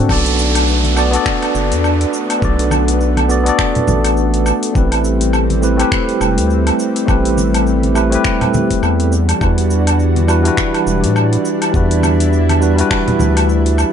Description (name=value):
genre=sunset chillout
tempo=103 BPM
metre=4/4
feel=swing 58% on 16ths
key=unclear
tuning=A4 = 440 Hz
part: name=tine electric piano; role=accompaniment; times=0.0-13.9 s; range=G3 to F#5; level=-17 LUFS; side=equal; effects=auto-pan, digital delay
part: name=lush unison pad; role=sustained chords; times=0.0-13.9 s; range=E3 to F#4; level=-20 LUFS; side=left 1 dB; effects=chorus
part: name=round analog bass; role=bass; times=0.1-13.8 s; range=E1 to A2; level=-15 LUFS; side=equal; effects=none
part: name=electronic kick drum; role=drums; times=0.1-13.0 s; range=none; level=-18 LUFS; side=equal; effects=none
part: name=smooth R&B drum kit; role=drums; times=0.1-13.9 s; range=finger snaps, hi-hat, shaker, woodblock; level=-21 LUFS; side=equal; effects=none
part: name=downlifter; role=sound effects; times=0.1-4.8 s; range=none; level=-24 LUFS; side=right 3 dB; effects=none
part: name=congas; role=percussion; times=0.8-13.3 s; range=none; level=-22 LUFS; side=left 3 dB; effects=none
room=light reverb, digital ambience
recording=nothing above 10.9 kHz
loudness=-12 LUFS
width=side -8 dB against mid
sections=0.1-13.9 A section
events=none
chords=0.1 Bm7; 4.8 Am9; 9.1 Em9